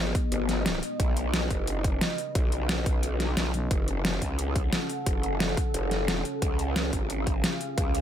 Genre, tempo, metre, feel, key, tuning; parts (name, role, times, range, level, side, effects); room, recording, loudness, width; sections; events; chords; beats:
dark technical drum and bass; 177 BPM; 4/4; straight; A4 = 435 Hz
deep dark ambient pad; sustained chords; 0.0-8.0 s; B3 to F#5; -33 LUFS; equal; chorus, built-in reverb, sidechain pumping
growl bass; bass; 0.0-8.0 s; F#1 to C#2; -29 LUFS; equal; chorus, overdrive, sidechain pumping
dubstep drum kit; drums; 0.1-8.0 s; hi-hat, snare drum; -30 LUFS; left 1 dB; overdrive
electronic kick drum; drums; 0.1-7.8 s; -28 LUFS; equal; overdrive
growling FM bass; bass; 3.5-3.7 s; B1; -28 LUFS; equal
little or no reverb; -25 LUFS; side -10 dB against mid
0.0-8.0 A section
0.0 G#m; 1.0 Badd9; 3.7 F#m; 6.4 C#
0.32 0.66 | 1.00 1.34 1.68 2.01 | 2.35 2.69 3.03 3.37 | 3.71 4.05 4.39 4.73 | 5.07 5.40 5.74 6.08 | 6.42 6.76 7.10 7.44 | 7.78